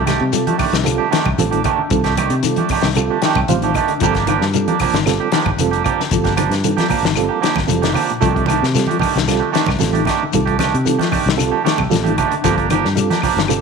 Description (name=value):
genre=afrobeat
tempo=114 BPM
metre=4/4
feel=straight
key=C dorian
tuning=A4 = 440 Hz
part: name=mellow electric guitar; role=arpeggios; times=0.0-13.6 s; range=Bb2 to G3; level=-23 LUFS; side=left 12 dB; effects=tremolo
part: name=twangy electric guitar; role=stabs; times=0.0-13.4 s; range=Eb3 to G4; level=-19 LUFS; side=right 9 dB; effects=none
part: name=fingered electric bass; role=bass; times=0.0-13.6 s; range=F1 to C3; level=-21 LUFS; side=left 2 dB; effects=none
part: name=warm soul drum kit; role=drums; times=0.1-13.6 s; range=hi-hat, kick drum, snare drum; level=-22 LUFS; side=left 7 dB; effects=none
part: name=claves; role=percussion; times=0.1-13.6 s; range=none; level=-30 LUFS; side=left 14 dB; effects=none
part: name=congas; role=percussion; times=0.1-13.6 s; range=none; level=-25 LUFS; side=right 9 dB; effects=none
part: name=shekere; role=percussion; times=0.1-13.6 s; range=none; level=-25 LUFS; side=left 10 dB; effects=none
part: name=reed electric piano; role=accompaniment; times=0.3-13.6 s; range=G3 to G5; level=-22 LUFS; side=right 10 dB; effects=fast tremolo
room=moderate echo chamber reverb, RT60 1.5 s, small room ambience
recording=1960s-style stereo with parts hard left and right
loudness=-14 LUFS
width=side -5 dB against mid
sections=0.0-13.6 A section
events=reed electric piano fill 3.0-4.0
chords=0.0 Cm69; 4.0 Gm7; 8.2 Cm69; 12.4 Gm7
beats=0.33 0.86 1.38 | 1.91 2.43 2.96 3.48 | 4.01 4.54 5.06 5.59 | 6.12 6.64 7.17 7.70 | 8.23 8.75 9.28 9.81 | 10.34 10.86 11.39 11.92 | 12.44 12.97 13.49